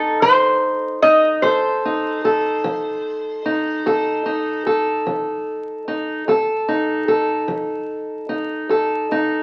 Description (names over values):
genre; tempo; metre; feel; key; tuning
acoustic country blues, solo or duo; 50 BPM (dotted quarters); 12/8; straight; F mixolydian; A4 = 439 Hz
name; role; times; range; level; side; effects
lap resonator guitar; melody; 0.0-4.6 s; A4 to Eb5; -18 LUFS; equal; none
fingerpicked steel-string acoustic guitar; accompaniment; 0.0-9.4 s; F2 to A4; -22 LUFS; equal; none
room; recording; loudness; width
moderate large studio reverb, RT60 0.9 s; very old 78 rpm record, vinyl crackle, nothing above 10.6 kHz; -20 LUFS; mono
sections
0.0-9.4 A section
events
none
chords
0.0 F7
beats
0.23 | 1.44 2.65 3.86 5.07 | 6.28 7.50 8.71